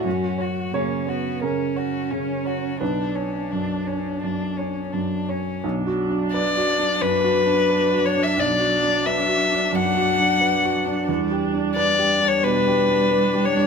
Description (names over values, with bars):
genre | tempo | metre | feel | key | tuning
neoclassical piano and strings | 88 BPM | 4/4 | rubato | B minor | A4 = 440 Hz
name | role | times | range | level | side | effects
muted violin | melody | 0.0-13.7 s | C#4 to F#5 | -22 LUFS | left 4 dB | none
muted cello | second line | 0.0-13.7 s | F#3 to F#4 | -29 LUFS | right 2 dB | none
warm baby grand piano | accompaniment | 0.0-13.7 s | B1 to C#5 | -24 LUFS | right 2 dB | none
muted viola | accompaniment | 5.7-13.7 s | D4 | -27 LUFS | right 2 dB | none
room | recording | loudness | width
moderate studio reverb, RT60 0.8 s | band playing live in one room | -19 LUFS | side -6 dB against mid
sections
0.0-5.6 A section; 5.6-13.7 A section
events
none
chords
0.1 F#; 2.8 Bmadd9; 5.6 Bm; 11.1 Em7